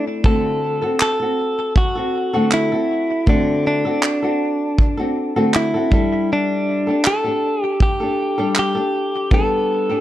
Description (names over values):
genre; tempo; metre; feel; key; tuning
acoustic pop; 79 BPM; 4/4; swing 55% on 16ths; unclear; A4 = 439 Hz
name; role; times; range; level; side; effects
direct-recorded clean electric guitar; melody; 0.0-10.0 s; D4 to A4; -20 LUFS; equal; plate reverb, digital delay
flamenco guitar; accompaniment; 0.0-10.0 s; D3 to A4; -21 LUFS; left 1 dB; plate reverb
natural country drum kit; drums; 0.2-9.5 s; handclaps, kick drum; -17 LUFS; equal; none
room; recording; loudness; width
moderate studio reverb, RT60 0.6 s; dark, warm production; -16 LUFS; side -13 dB against mid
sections
0.0-10.0 A section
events
none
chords
0.2 D7; 5.9 Gsus2; 9.3 Gadd9